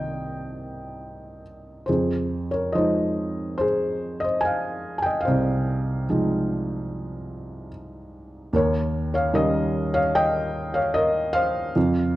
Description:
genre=classical, lyrical solo piano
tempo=73 BPM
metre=4/4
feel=uneven beats, rubato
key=F minor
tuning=A4 = 440 Hz
part: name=felt-muted upright piano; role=solo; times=0.0-12.2 s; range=C2 to Ab5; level=-22 LUFS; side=equal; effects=none
room=moderate recital hall reverb, RT60 1.5 s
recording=dark, warm production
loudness=-21 LUFS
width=side -16 dB against mid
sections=0.0-12.2 A section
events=none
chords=0.0 Cm7; 1.9 Fm7; 8.5 Eb7

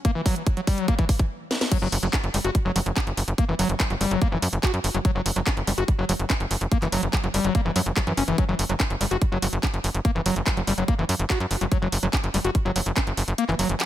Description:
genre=psychedelic trance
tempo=144 BPM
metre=4/4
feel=straight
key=unclear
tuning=A4 = 439 Hz
part: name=screaming distorted acid line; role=riff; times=0.0-13.7 s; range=E3 to F#4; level=-27 LUFS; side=left 1 dB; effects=distortion, chorus, auto-pan, sidechain pumping, digital delay
part: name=electronic kick drum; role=drums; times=0.0-13.0 s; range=none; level=-22 LUFS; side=equal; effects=none
part: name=garage drum kit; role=drums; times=0.0-13.9 s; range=crash cymbal, handclaps, hi-hat, snare drum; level=-28 LUFS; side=equal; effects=none
part: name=tight sequencer bass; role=bass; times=1.8-13.8 s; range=F#1 to F#2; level=-25 LUFS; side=equal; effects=none
room=light reverb, digital ambience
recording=none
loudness=-21 LUFS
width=side -13 dB against mid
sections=0.0-1.7 A section; 1.7-13.9 B section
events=build-up 0.0-1.7; drum fill 0.0-1.3, 1.5; stop 1.3-1.7; drop 1.7-13.9; kick drops out 13.4-13.9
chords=0.0 F#5

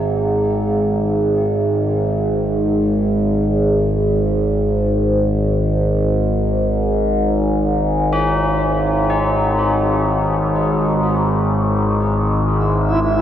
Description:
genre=dark ambient drone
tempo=free time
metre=none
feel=none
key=unclear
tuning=A4 = 438 Hz
part: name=tubular bells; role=arpeggios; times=0.0-13.2 s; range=C#4 to G4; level=-24 LUFS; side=left 2 dB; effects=tape echo
part: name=overtone-sweeping drone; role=drone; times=0.0-13.2 s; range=G#1 to G#2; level=-15 LUFS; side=equal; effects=chorus, built-in reverb
part: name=backwards swelling texture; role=texture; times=12.6-13.2 s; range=E4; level=-19 LUFS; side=right 2 dB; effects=built-in reverb
room=wet huge ambient reverb, RT60 8.3 s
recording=worn, warbling old tape, cassette tape, warbly pitch drift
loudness=-15 LUFS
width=side -10 dB against mid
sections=0.0-13.2 A section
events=none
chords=0.0 G#5; 12.5 N.C.

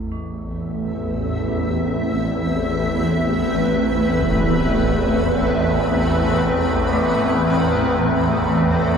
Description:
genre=dark ambient drone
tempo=free time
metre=none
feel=none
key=A minor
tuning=A4 = 440 Hz
part: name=granular cloud pad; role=sustained chords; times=0.0-9.0 s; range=A3 to E5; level=-21 LUFS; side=equal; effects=built-in reverb
part: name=gamelan-type bronze metallophone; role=arpeggios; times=0.0-9.0 s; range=A3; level=-32 LUFS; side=right 2 dB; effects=none
part: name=swarming drone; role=drone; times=0.0-9.0 s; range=A1 to E2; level=-19 LUFS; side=equal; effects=built-in reverb, phaser
part: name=bronze singing bowl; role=texture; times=0.0-9.0 s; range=E4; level=-44 LUFS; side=right 4 dB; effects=none
part: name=impact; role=percussion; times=4.2-4.4 s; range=none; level=-28 LUFS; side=equal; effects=low-pass filter on sfx
room=wet spring reverb, RT60 2.4 s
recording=echo-heavy mix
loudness=-17 LUFS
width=side -6 dB against mid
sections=0.0-9.0 A section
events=fade-in on impacts and reversed cymbals 0.0-9.0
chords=0.0 Amadd9

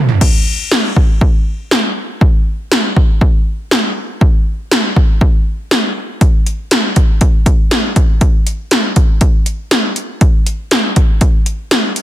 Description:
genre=pop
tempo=120 BPM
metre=4/4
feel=straight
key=none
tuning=none
part: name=80s electronic pad drums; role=drums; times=0.1-12.0 s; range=crash cymbal, hi-hat, kick drum, snare drum, toms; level=-10 LUFS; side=equal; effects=gated reverb on snare and toms
room=digital ambience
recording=dense, heavily limited modern master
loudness=-11 LUFS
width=side -14 dB against mid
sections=0.2-12.0 A section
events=drum fill 0.0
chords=none

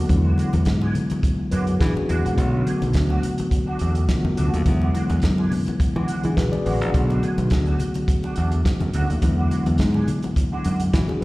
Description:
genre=disco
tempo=105 BPM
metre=4/4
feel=straight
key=unclear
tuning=A4 = 440 Hz
part: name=mellow tine electric piano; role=accompaniment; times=0.0-11.2 s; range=D3 to D5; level=-24 LUFS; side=left 1 dB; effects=none
part: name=semi-hollow electric guitar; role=accompaniment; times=0.0-11.1 s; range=G#3 to G#4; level=-33 LUFS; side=right 3 dB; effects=wah, ensemble chorus, slapback echo
part: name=modern bright fingered electric bass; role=bass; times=0.0-11.1 s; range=A1 to E3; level=-21 LUFS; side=equal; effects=none
part: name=warm soul drum kit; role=drums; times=0.1-11.1 s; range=hi-hat, kick drum, snare drum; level=-23 LUFS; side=equal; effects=none
part: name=congas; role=percussion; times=0.1-11.2 s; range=none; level=-30 LUFS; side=left 2 dB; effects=none
room=small room ambience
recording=live gig heard through the venue's PA, recital hall reverb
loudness=-19 LUFS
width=side -20 dB against mid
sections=0.0-11.2 A section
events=none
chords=0.1 E9; 2.4 Bm7; 4.7 E9; 6.9 Bm7; 9.2 E9

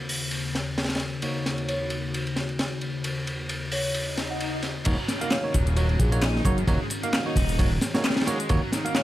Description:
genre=breakbeat, breaks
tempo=132 BPM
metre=4/4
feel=swing 55% on 16ths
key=Eb minor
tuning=A4 = 440 Hz
part: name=warbly tape-like pad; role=sustained chords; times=0.0-9.0 s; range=Eb2 to Gb4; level=-33 LUFS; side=left 3 dB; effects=chorus, built-in reverb, vintage 12-bit sampler grit, sidechain pumping
part: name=barky tine electric piano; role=stabs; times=0.0-9.0 s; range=Bb3 to F5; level=-34 LUFS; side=right 3 dB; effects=vintage 12-bit sampler grit, low-pass filter, dub echo
part: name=crunchy breakbeat drum kit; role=drums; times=0.1-9.0 s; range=crash cymbal, hi-hat, kick drum, ride cymbal, snare drum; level=-26 LUFS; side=equal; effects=high-pass filter on kick, high-pass filter on cymbals, high-pass filter on hats, high-pass filter on snare, high-pass filter on room
part: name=marimba with soft mallets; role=melody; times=1.7-9.0 s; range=Ab4 to Gb5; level=-34 LUFS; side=left 1 dB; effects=small speaker sound, dub echo
part: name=swell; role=sound effects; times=4.1-4.9 s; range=none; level=-33 LUFS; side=left 3 dB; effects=none
part: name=raw garage guitar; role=riff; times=4.9-9.0 s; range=Db3 to Eb4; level=-33 LUFS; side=equal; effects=overdrive, vintage 12-bit sampler grit, dub echo
part: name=fat analog bass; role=bass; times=4.9-8.6 s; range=Eb1 to Bb1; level=-24 LUFS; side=equal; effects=none
part: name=punchy analog drum machine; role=drums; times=4.9-9.0 s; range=handclaps, hi-hat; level=-33 LUFS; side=left 1 dB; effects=overdrive, low-pass filter on snare, low-pass filter on hats
room=light reverb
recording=vinyl crackle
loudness=-23 LUFS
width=side -14 dB against mid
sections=0.0-4.9 A section; 4.9-9.0 B section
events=filter sweep on tine electric piano 0.0-4.9; swell 4.1-4.9; drop 4.9-9.0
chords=0.0 Ebm7

